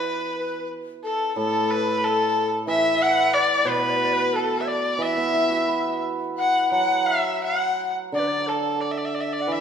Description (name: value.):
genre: chinese traditional, Chinese chamber ensemble.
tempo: 83-93 BPM.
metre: 4/4.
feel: rubato.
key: unclear.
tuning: A4 = 439 Hz.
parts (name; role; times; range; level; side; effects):
rich erhu; melody; 0.0-9.6 s; A4 to F#5; -23 LUFS; right 1 dB; none.
bright reedy large dizi; second line; 0.0-9.6 s; A4 to F#5; -26 LUFS; left 7 dB; none.
hammered dulcimer; accompaniment; 0.0-9.6 s; A2 to B4; -28 LUFS; right 3 dB; none.
room: wet recital hall reverb, RT60 1.3 s.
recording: minimal, uncompressed stereo recording.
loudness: -20 LUFS.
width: side -7 dB against mid.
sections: 0.0-9.6 A section.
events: none.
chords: none.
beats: | 0.05 0.72 1.37 2.04 | 2.69 3.34 4.01 4.67 | 5.34 6.02 6.72 7.43 | 8.14 8.82 9.49.